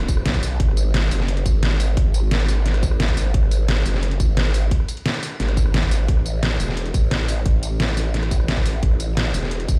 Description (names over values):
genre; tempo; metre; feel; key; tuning
dark technical drum and bass; 175 BPM; 4/4; straight; unclear; A4 = 440 Hz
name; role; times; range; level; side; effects
growl bass; bass; 0.0-9.8 s; E1 to B1; -23 LUFS; equal; chorus, overdrive, sidechain pumping
dubstep drum kit; drums; 0.0-9.8 s; hi-hat, rim click, snare drum, tambourine; -27 LUFS; equal; none
electronic kick drum; drums; 0.1-9.8 s; none; -21 LUFS; equal; none
room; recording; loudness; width
little or no reverb; played on a big sound system in a bare room, large studio reverb; -20 LUFS; mono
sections
0.0-9.8 A section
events
none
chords
none